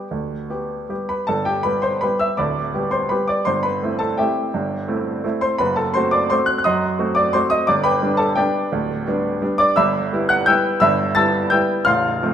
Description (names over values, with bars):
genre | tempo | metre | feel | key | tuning
classical, piano waltz | 147-182 BPM | 3/4 | rubato | G major | A4 = 443 Hz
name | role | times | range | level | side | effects
bright baby grand piano | solo | 0.0-12.3 s | A0 to A6 | -17 LUFS | equal | none
room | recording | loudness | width
wet recital hall reverb, RT60 1.9 s | minimal, uncompressed stereo recording | -17 LUFS | side -9 dB against mid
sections
0.0-1.3 A section; 1.3-12.3 B section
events
none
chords
0.0 G; 3.5 Am7/G; 5.6 F#dim7; 7.7 G; 9.8 Em/G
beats
| 0.12 0.50 0.91 | 1.29 1.65 2.02 | 2.38 2.73 3.10 | 3.46 3.82 4.18 | 4.54 4.88 5.24 | 5.59 5.95 6.31 | 6.65 6.99 7.34 | 7.68 8.02 8.37 | 8.72 9.07 9.42 | 9.77 10.12 10.48 | 10.83 11.17 11.53 | 11.88 12.23